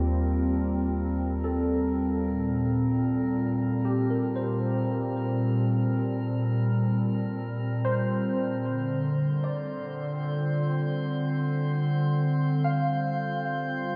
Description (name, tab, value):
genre	ambient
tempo	75 BPM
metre	4/4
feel	straight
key	unclear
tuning	A4 = 440 Hz
part	warbly tape-like pad	sustained chords	0.0-14.0 s	Eb2 to A5	-28 LUFS	equal	chorus, built-in reverb
part	barky tine electric piano	arpeggios	0.0-14.0 s	F4 to F5	-37 LUFS	equal	ensemble chorus, delay
part	drifting glass-harmonics texture	texture	0.0-14.0 s	Bb3 to C6	-42 LUFS	equal	chorus, built-in reverb
room	wet cathedral reverb, RT60 5.4 s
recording	in a vast, echoing space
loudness	-27 LUFS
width	mono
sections	0.0-14.0 A section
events	fade-in on synth texture 0.0-14.0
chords	0.0 Eb; 2.2 Bb5; 8.6 Dm7